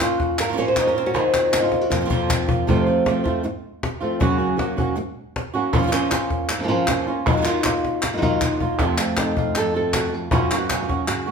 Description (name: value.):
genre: flamenco.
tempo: 157 BPM.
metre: 4/4.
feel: straight.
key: F phrygian dominant.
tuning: A4 = 440 Hz.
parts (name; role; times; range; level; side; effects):
flamenco guitar; melody; 0.0-11.3 s; F2 to Db5; -22 LUFS; equal; none.
oud; second line; 0.0-2.4, 8.8-11.3 s; A3 to Eb4; -26 LUFS; left 2 dB; none.
flamenco guitar; stabs; 0.0-11.3 s; F2 to Gb4; -27 LUFS; right 6 dB; none.
cajon; percussion; 0.0-11.1 s; none; -25 LUFS; left 2 dB; none.
palmas hand claps; percussion; 0.0-2.5, 5.7-11.3 s; none; -26 LUFS; equal; none.
room: wet large studio reverb, RT60 0.9 s.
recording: band playing live in one room.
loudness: -18 LUFS.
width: side -6 dB against mid.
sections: 0.0-2.7 A section; 2.7-8.8 B section; 8.8-11.3 C section.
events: drum fill 1.1-2.7, 7.8-8.8.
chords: 0.0 Bbm; 1.1 Ebmadd9; 1.9 Fsus4; 2.7 F; 4.2 Gb; 5.7 Bbm; 7.3 Ebmadd9; 8.8 F; 10.3 Gb.